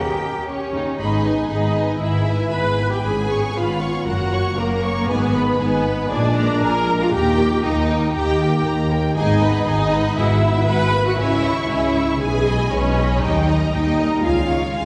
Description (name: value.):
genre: cinematic, heroic adventure film score.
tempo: 118 BPM.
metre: 4/4.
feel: straight.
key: G# harmonic minor.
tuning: A4 = 440 Hz.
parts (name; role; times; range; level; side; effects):
warm symphonic violin section; melody; 0.0-14.8 s; A#4 to B5; -30 LUFS; equal; none.
warm symphonic violin section; second line; 0.0-14.8 s; C#4 to C#6; -30 LUFS; equal; none.
warm symphonic viola section; accompaniment; 0.0-14.8 s; C#3 to B4; -24 LUFS; equal; none.
mellow trumpet; stabs; 0.0-0.5 s; A#4; -34 LUFS; equal; none.
warm symphonic cello section; bass; 0.0-14.8 s; C#2 to G4; -26 LUFS; equal; none.
warm symphonic double bass section; bass; 0.0-14.8 s; F#1 to D#2; -26 LUFS; equal; none.
mellow French horn section; sustained chords; 1.0-14.8 s; G3 to G#4; -30 LUFS; equal; none.
timpani; percussion; 10.2-10.9 s; G#2; -29 LUFS; equal; none.
room: wet concert hall reverb, RT60 2.5 s.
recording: recorded in a church or concert hall, nothing above 10.3 kHz.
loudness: -19 LUFS.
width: mono.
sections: 1.0-14.8 A section.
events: none.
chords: 0.0 D#7; 1.0 G#m; 2.0 E/G#; 3.0 C#7/G#; 4.1 F#; 5.1 G#m; 6.1 A#7; 7.1 D#; 9.2 G#m; 10.2 Eadd9/G#; 11.2 C#m; 12.2 G#m/B; 13.2 D#; 14.2 C#.